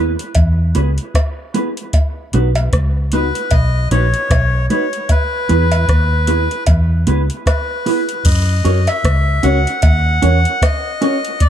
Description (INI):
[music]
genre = roots reggae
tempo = 76 BPM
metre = 4/4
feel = swing 58% on 16ths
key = unclear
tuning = A4 = 439 Hz
[part]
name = mellow electric guitar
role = accompaniment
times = 0.0-11.2 s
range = B3 to C#5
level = -20 LUFS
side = right 2 dB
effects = lush chorus, dub echo
[part]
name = vintage muted fingered electric bass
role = bass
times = 0.0-10.4 s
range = A#1 to F#2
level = -14 LUFS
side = equal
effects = none
[part]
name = soft vintage rhythm box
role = drums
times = 0.2-11.5 s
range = crash cymbal, hi-hat, kick drum, rim click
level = -16 LUFS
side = equal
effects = none
[part]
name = cowbell and jawbone-type rattle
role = percussion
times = 0.3-10.8 s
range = none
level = -25 LUFS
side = equal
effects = none
[part]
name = melodica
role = melody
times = 3.1-11.5 s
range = B4 to F#5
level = -20 LUFS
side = left 2 dB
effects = dub echo
[sound]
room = light reverb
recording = none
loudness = -13 LUFS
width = side -10 dB against mid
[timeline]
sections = 0.0-8.2 A section; 8.2-11.5 B section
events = none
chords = 0.0 E; 1.9 B; 5.1 E; 8.2 F#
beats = 0.36 1.15 | 1.94 2.73 3.51 4.30 | 5.09 5.88 6.67 7.46 | 8.25 9.04 9.83 10.62 | 11.40